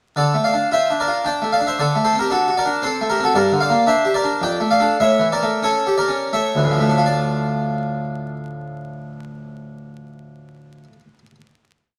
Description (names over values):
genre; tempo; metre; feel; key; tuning
classical, baroque-style suite movement for harpsichord; 78-116 BPM; 3/4; rubato; D minor; A4 = 438 Hz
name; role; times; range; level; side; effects
harpsichord; solo; 0.2-11.4 s; D2 to G5; -19 LUFS; equal; none
room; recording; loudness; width
moderate recital hall reverb, RT60 1.7 s; close, detailed microphones, vinyl crackle; -19 LUFS; mono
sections
0.2-7.0 A section; 7.0-11.3 final chord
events
slowing down 2.6-7.0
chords
0.2 Dm; 1.8 D7; 3.4 Gm; 4.4 Dm/F; 5.0 A; 7.0 Dm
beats
| 0.15 0.71 1.25 | 1.78 2.30 2.83 | 3.35 3.88 4.43 | 5.01 5.63 6.30 | 7.05 7.78 8.48 | 9.17 9.87 10.57